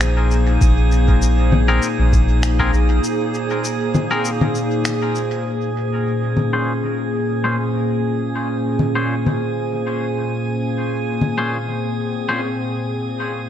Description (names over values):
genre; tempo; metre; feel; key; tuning
ambient dub; 99 BPM; 4/4; swing 55% on 16ths; Bb minor; A4 = 440 Hz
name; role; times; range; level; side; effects
warbly tape-like pad; sustained chords; 0.0-13.5 s; Bb2 to C5; -21 LUFS; left 1 dB; chorus, built-in reverb
soft dub sub bass; bass; 0.0-3.0 s; Bb1; -15 LUFS; equal; none
electronic finger snaps, shaker and congas; drums; 0.0-11.3 s; none; -22 LUFS; left 2 dB; small room reverb, dub echo
drifting glass-harmonics texture; texture; 0.0-13.5 s; Ab4 to Ab5; -28 LUFS; right 5 dB; chorus, built-in reverb
electronic kick drum; drums; 0.6-2.7 s; none; -17 LUFS; equal; small room reverb
twangy electric guitar; stabs; 1.7-12.4 s; Bb2 to C5; -25 LUFS; left 2 dB; low-pass filter, dub echo
room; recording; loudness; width
moderate echo chamber reverb, RT60 1.7 s; none; -17 LUFS; side -10 dB against mid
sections
0.0-5.5 A section; 5.5-13.5 B section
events
break 3.0-5.5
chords
0.0 Abadd9/Bb; 5.5 Bbm7